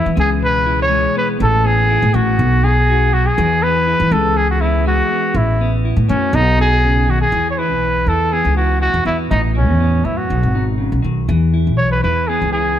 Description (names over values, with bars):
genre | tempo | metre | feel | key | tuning
highlife guitar band | 121 BPM | 4/4 | straight | E major | A4 = 440 Hz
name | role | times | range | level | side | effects
warm trumpet | melody | 0.0-12.8 s | C#4 to C#5 | -17 LUFS | equal | slapback echo
clean electric guitar | accompaniment | 0.0-12.8 s | A2 to F#4 | -20 LUFS | left 4 dB | spring reverb
upright bass | bass | 0.1-12.8 s | G#1 to E3 | -16 LUFS | equal | none
room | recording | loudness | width
light reverb | none | -13 LUFS | side -10 dB against mid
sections
0.0-7.3 A section; 7.3-12.8 B section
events
none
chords
0.0 E; 1.4 Asus2; 2.4 B6; 3.4 E; 5.4 Asus2; 6.3 B6; 7.3 E5; 9.3 Aadd9; 10.3 B6; 11.3 E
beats
0.42 0.91 | 1.41 1.90 2.39 2.89 | 3.38 3.87 4.37 4.86 | 5.35 5.85 6.34 6.83 | 7.33 7.82 8.32 8.81 | 9.31 9.80 10.30 10.80 | 11.29 11.79 12.28 12.78